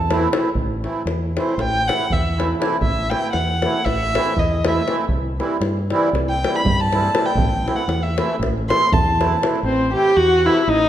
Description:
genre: balkan folk, Balkan wedding band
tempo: 238 BPM (eighths)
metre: 9/8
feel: straight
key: A dorian sharp4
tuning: A4 = 440 Hz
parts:
  - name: dark violin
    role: melody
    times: 0.0-10.9 s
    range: C4 to C6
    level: -20 LUFS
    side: equal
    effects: none
  - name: clear trumpet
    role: second line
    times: 0.0-0.1, 9.7-10.9 s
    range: C5 to G5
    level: -26 LUFS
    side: left 5 dB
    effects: none
  - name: fingered electric bass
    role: bass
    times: 0.0-10.9 s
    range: A1 to G2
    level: -23 LUFS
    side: equal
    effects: none
  - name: accordion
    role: accompaniment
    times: 0.1-10.6 s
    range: C3 to E4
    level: -24 LUFS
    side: right 2 dB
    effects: light tremolo tuning
  - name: davul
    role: percussion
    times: 0.1-9.6 s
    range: none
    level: -23 LUFS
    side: left 1 dB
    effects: none
room: wet recital hall reverb, RT60 1.8 s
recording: none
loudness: -17 LUFS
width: side -11 dB against mid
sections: 0.5-9.6 A section; 9.6-10.9 B section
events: violin solo 0.5-9.6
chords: 0.0 Am; 5.1 C; 7.4 Am

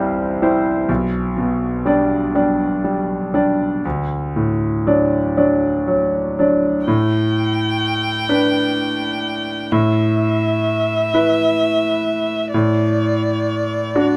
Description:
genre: neoclassical piano and strings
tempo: 39-43 BPM (dotted quarters)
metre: 6/8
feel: rubato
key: unclear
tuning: A4 = 437 Hz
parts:
  - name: bright concert grand piano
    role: accompaniment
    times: 0.0-14.2 s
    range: B1 to D5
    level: -19 LUFS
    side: equal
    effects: none
  - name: rich violin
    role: melody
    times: 6.9-14.2 s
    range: D5 to G5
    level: -23 LUFS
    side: equal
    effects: none
room: moderate booth ambience, RT60 0.2 s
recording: none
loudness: -18 LUFS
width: mono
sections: 0.0-6.9 A section; 6.9-14.2 B section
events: none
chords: 0.0 C; 0.9 G/B; 3.8 D; 6.9 Gadd9/A; 9.7 E5/A; 12.5 D/A

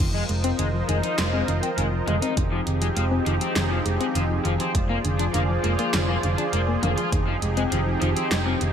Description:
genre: synthwave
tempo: 101 BPM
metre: 4/4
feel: straight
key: unclear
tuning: A4 = 438 Hz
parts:
  - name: soft supersaw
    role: sustained chords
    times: 0.0-8.7 s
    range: F3 to Eb5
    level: -27 LUFS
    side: right 2 dB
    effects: analog chorus, sidechain pumping
  - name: thumb-piano-like synth pluck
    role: arpeggios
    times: 0.0-8.7 s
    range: D3 to C4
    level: -29 LUFS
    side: left 2 dB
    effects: chorus, ping-pong delay
  - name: picked electric bass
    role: bass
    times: 0.0-8.7 s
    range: F1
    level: -25 LUFS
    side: equal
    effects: sidechain pumping
  - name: electronic kick drum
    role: drums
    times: 0.0-7.2 s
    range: none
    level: -25 LUFS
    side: equal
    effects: none
  - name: crunchy overdriven guitar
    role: riff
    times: 0.1-8.5 s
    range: F3 to F4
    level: -30 LUFS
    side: left 4 dB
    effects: wide subtle chorus, vintage 12-bit sampler grit, low-pass filter, ping-pong delay
  - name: pop drum kit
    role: drums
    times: 0.3-8.7 s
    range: hi-hat, snare drum, toms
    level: -29 LUFS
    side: equal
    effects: gated reverb
room: moderate plate reverb, RT60 1.6 s, digital ambience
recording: bright 1980s-style digital production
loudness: -21 LUFS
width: side -8 dB against mid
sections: 0.0-8.7 A section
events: none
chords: 0.0 Ab6/F; 2.4 Fm7; 4.7 Bb7/F; 7.1 Fm7

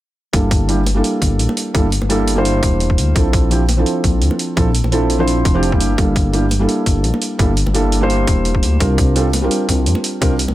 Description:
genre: liquid drum and bass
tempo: 170 BPM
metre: 4/4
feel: swing 54% on 16ths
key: G dorian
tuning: A4 = 442 Hz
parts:
  - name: felt-muted upright piano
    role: accompaniment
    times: 0.3-10.3 s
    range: F3 to C5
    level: -18 LUFS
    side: right 1 dB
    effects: digital delay
  - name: dark detuned saw bass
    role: bass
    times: 0.3-10.5 s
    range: E1 to F2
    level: -17 LUFS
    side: equal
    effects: none
  - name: electronic hi-hat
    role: drums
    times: 0.3-10.5 s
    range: none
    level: -24 LUFS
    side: right 2 dB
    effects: none
  - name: electronic kick drum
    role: drums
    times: 0.3-10.3 s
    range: none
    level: -16 LUFS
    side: equal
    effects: overdrive
  - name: bongos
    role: percussion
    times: 0.9-10.5 s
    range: none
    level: -26 LUFS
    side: right 1 dB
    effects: none
room: little or no reverb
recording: none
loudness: -13 LUFS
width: side -15 dB against mid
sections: 0.3-10.5 A section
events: none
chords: 0.3 Gm69; 3.2 Bbmaj9#11; 5.8 Gm69; 8.8 C7sus4

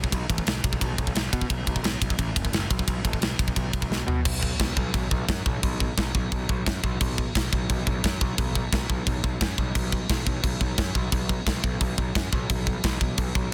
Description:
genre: heavy metal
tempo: 175 BPM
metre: 4/4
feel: straight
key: unclear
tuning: A4 = 441 Hz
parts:
  - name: fuzz picked electric bass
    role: bass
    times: 0.0-13.5 s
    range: F#1 to B2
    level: -31 LUFS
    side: equal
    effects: overdrive
  - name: tight metal drum kit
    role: drums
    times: 0.0-13.4 s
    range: crash cymbal, kick drum, ride cymbal, snare drum, toms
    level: -28 LUFS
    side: equal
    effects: none
room: little or no reverb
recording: dense, heavily limited modern master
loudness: -26 LUFS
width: mono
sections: 0.0-4.3 A section; 4.3-13.5 B section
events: drum fill 3.9-4.3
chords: none

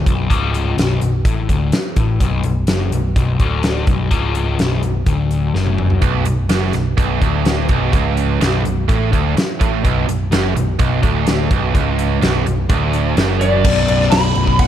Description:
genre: hard rock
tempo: 126 BPM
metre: 4/4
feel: straight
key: B minor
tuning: A4 = 440 Hz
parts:
  - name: sludgy distorted guitar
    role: riff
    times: 0.0-14.7 s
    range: B1 to B2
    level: -20 LUFS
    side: left 5 dB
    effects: overdrive
  - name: picked electric bass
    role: bass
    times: 0.0-14.7 s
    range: B0 to A1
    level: -20 LUFS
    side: equal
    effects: none
  - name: big rock drum kit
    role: drums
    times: 0.1-14.7 s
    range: crash cymbal, hi-hat, kick drum, snare drum, toms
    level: -18 LUFS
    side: equal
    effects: none
  - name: tight distorted guitar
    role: riff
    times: 6.0-13.6 s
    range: B1 to A2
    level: -20 LUFS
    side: right 13 dB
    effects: distortion
  - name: lead guitar through a small cranked amp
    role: melody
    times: 13.4-14.7 s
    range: D5 to B5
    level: -17 LUFS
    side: equal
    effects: overdrive, slapback echo
room: light reverb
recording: none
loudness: -14 LUFS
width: side -10 dB against mid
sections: 0.0-13.6 A section; 13.6-14.7 B section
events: drum fill 5.5-6.0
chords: 0.0 Bm

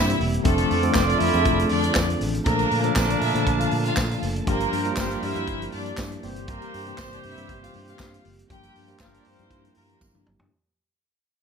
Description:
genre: disco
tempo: 119 BPM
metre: 4/4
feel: straight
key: G dorian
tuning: A4 = 437 Hz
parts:
  - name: warm studio violin section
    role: second line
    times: 0.0-10.2 s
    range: A3 to G5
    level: -28 LUFS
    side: right 1 dB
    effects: none
  - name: mellow tine electric piano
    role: accompaniment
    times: 0.0-10.5 s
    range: E3 to A4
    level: -27 LUFS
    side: left 2 dB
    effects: medium stereo tremolo
  - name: warm studio string section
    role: sustained chords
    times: 0.0-10.5 s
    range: Bb2 to A5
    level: -32 LUFS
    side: right 3 dB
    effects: none
  - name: mellow horn section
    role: stabs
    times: 0.0-10.2 s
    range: Bb3 to D5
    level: -29 LUFS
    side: right 3 dB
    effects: none
  - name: fingered electric bass with an envelope filter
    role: bass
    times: 0.0-10.5 s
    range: E1 to Bb2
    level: -28 LUFS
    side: equal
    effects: none
  - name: vintage drum kit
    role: drums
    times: 0.1-10.5 s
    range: handclaps, hi-hat, kick drum, snare drum, toms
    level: -28 LUFS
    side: equal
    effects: none
  - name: tambourine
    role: percussion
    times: 1.0-10.1 s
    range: none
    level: -36 LUFS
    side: right 5 dB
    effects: none
room: moderate studio reverb, RT60 0.5 s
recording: none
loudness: -20 LUFS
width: side -6 dB against mid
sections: 0.0-10.5 A section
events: fade-out 0.0-10.5; drum fill 10.0-10.5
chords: 0.5 F6; 2.5 Bbmaj7; 4.5 Gm7; 6.2 C7/G; 8.5 Gm7

